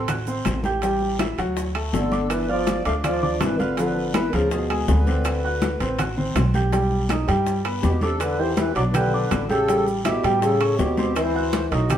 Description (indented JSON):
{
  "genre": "Afro-Cuban jazz",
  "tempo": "163 BPM",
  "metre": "4/4",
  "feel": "straight",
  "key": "unclear",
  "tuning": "A4 = 439 Hz",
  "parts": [
    { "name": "breathy trombone", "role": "melody", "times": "0.0-12.0 s", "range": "A2 to A3", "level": "-25 LUFS", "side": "left 1 dB", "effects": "none" },
    { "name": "accordion", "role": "second line", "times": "0.0-12.0 s", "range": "F#4 to F5", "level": "-29 LUFS", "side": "right 1 dB", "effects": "light tremolo tuning" },
    { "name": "warm grand piano", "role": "accompaniment", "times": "0.0-12.0 s", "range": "E#3 to G6", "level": "-25 LUFS", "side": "right 1 dB", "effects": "none" },
    { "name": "upright bass", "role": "bass", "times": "0.0-12.0 s", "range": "G1 to A2", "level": "-25 LUFS", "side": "equal", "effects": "none" },
    { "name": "bongos", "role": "percussion", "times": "0.1-12.0 s", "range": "none", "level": "-31 LUFS", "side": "left 5 dB", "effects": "none" },
    { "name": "claves", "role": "percussion", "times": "0.1-12.0 s", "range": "none", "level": "-39 LUFS", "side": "equal", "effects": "none" },
    { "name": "congas", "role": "percussion", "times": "0.1-12.0 s", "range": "none", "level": "-29 LUFS", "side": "left 1 dB", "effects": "none" },
    { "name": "guiro", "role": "percussion", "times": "0.1-12.0 s", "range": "none", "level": "-40 LUFS", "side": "left 3 dB", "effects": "none" },
    { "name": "maracas", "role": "percussion", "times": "0.1-12.0 s", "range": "none", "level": "-44 LUFS", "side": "right 6 dB", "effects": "none" },
    { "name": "timbales", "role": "percussion", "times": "0.1-12.0 s", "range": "none", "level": "-32 LUFS", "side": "right 7 dB", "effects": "none" }
  ],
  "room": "moderate stone room reverb, RT60 1.1 s",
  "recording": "band playing live in one room",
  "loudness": "-19 LUFS",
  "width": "side -10 dB against mid",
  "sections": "0.0-12.0 A section",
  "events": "none",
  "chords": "0.0 D7 (rootless); 0.8 A5; 1.6 D; 2.3 G5; 3.8 G#dim7; 5.3 D7; 6.7 Baug; 8.2 Em7; 9.7 A9; 11.2 D9",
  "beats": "0.09 0.46 | 0.83 1.20 1.56 1.93 | 2.30 2.67 3.04 3.41 | 3.78 4.14 4.51 4.88 | 5.25 5.62 5.99 6.36 | 6.73 7.10 7.47 7.84 | 8.21 8.57 8.94 9.31 | 9.68 10.05 10.42 10.79 | 11.16 11.53 11.90"
}